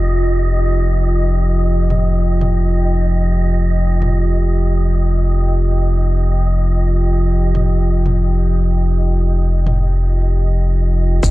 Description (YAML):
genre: ambient dub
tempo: 85 BPM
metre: 4/4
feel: swing 56% on 16ths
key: unclear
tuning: A4 = 440 Hz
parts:
  - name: deep dark ambient pad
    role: sustained chords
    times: 0.0-11.3 s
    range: F4 to G5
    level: -21 LUFS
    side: right 1 dB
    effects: chorus, built-in reverb
  - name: round analog bass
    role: bass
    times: 0.0-11.3 s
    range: F1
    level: -14 LUFS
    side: equal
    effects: tube saturation
  - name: wind-like tuned noise texture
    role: texture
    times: 0.0-11.3 s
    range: Eb5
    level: -28 LUFS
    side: right 1 dB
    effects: built-in reverb
  - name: electronic toms and shaker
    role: drums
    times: 1.9-11.3 s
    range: none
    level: -25 LUFS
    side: equal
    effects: low-pass filter on toms, studio reverb, low-pass filter on perc
  - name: electronic kick drum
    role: drums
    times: 11.2-11.3 s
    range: none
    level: -14 LUFS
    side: equal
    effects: overdrive, studio reverb
room: digital ambience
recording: dark, warm production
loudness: -13 LUFS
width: side -17 dB against mid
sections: 0.0-11.2 A section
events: filter sweep on drum 0.0-11.2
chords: 0.0 Fsus2